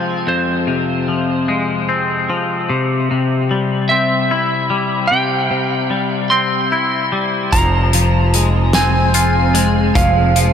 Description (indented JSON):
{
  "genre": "post-rock",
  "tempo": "50 BPM (dotted quarters)",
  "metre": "6/8",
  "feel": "straight",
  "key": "F minor",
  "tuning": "A4 = 440 Hz",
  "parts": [
    { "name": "clean lap steel guitar", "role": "melody", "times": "0.0-10.5 s", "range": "C5 to C6", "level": "-19 LUFS", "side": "right 2 dB", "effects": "ping-pong delay" },
    { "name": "twangy electric guitar", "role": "arpeggios", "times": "0.0-10.5 s", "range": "F2 to F4", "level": "-17 LUFS", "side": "left 3 dB", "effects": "analog chorus, ping-pong delay" },
    { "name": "ethereal airy pad", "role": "sustained chords", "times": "8.6-10.5 s", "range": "F3 to C5", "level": "-21 LUFS", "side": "right 1 dB", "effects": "ensemble chorus, built-in reverb" },
    { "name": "growling picked electric bass", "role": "bass", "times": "7.5-10.5 s", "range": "F1", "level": "-15 LUFS", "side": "right 1 dB", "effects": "overdrive" },
    { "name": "loose indie drum kit", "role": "drums", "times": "7.5-10.5 s", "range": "hi-hat, kick drum, snare drum", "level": "-19 LUFS", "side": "equal", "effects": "none" }
  ],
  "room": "wet huge ambient reverb, RT60 7.5 s",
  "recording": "dreamy mix soaked in reverb",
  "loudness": "-13 LUFS",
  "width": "side -8 dB against mid",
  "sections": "0.0-10.5 A section",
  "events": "none",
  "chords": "0.0 Fm; 2.7 C; 7.5 Fm",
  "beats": "| 0.27 1.48 | 2.69 3.90 | 5.11 6.32 | 7.53 8.74 | 9.95"
}